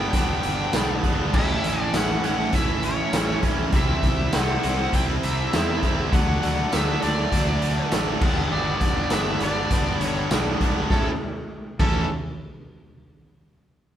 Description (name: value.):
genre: classic rock.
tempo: 100 BPM.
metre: 4/4.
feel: straight.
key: unclear.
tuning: A4 = 441 Hz.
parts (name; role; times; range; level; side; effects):
nasal lead guitar with a parked wah; melody; 0.0-12.1 s; A4 to G5; -29 LUFS; left 2 dB; overdrive.
phased string machine; sustained chords; 0.0-11.3 s; C#4 to E5; -40 LUFS; equal; none.
cranked stack guitar; riff; 0.0-12.0 s; G2 to E4; -27 LUFS; right 5 dB; overdrive.
overdriven electric guitar; riff; 0.0-12.0 s; G2 to E4; -30 LUFS; left 5 dB; none.
fuzz fingered electric bass; bass; 0.0-12.1 s; G1 to E2; -29 LUFS; equal; overdrive.
raw garage drum kit; drums; 0.1-11.9 s; crash cymbal, hi-hat, kick drum, snare drum, tambourine; -24 LUFS; equal; none.
room: moderate stone room reverb, RT60 1.1 s.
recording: band playing live in one room.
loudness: -20 LUFS.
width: side -10 dB against mid.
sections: 0.0-10.9 A section; 10.9-13.3 B section.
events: none.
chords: 0.0 G; 1.3 A; 3.7 C; 6.1 D; 8.2 G; 10.9 A.